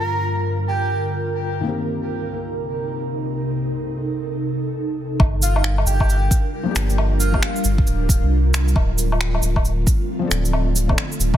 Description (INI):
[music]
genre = future garage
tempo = 135 BPM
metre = 4/4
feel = swing 62% on 16ths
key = G minor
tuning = A4 = 440 Hz
[part]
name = airy dreamy lead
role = melody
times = 0.0-1.0, 5.4-7.6 s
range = F5 to Bb5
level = -28 LUFS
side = right 1 dB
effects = chorus, ping-pong delay
[part]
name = felt-muted upright piano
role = accompaniment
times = 0.0-7.5, 10.2-11.0 s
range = Eb3 to A4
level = -28 LUFS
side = left 4 dB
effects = sidechain pumping, ping-pong delay
[part]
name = ethereal airy pad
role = sustained chords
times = 0.0-11.4 s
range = C2 to Bb4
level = -25 LUFS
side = right 1 dB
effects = ensemble chorus, built-in reverb, sidechain pumping
[part]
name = warm sub bass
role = bass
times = 5.2-11.4 s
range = D1 to C2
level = -19 LUFS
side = equal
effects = tube saturation, sidechain pumping
[part]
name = electronic kick drum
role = drums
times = 5.2-11.4 s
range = none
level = -18 LUFS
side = equal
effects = none
[part]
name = electronic woodblock, cabasa, shaker and finger snaps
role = drums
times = 5.2-11.4 s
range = none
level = -24 LUFS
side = equal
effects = soft clipping on snare
[sound]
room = light reverb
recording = dense, heavily limited modern master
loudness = -18 LUFS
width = side -11 dB against mid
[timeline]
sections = 0.0-5.2 A section; 5.2-11.4 B section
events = filter sweep on felt piano 0.0-5.2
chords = 0.0 Gm7; 1.6 Cm7; 5.2 Gm7; 8.8 Dm7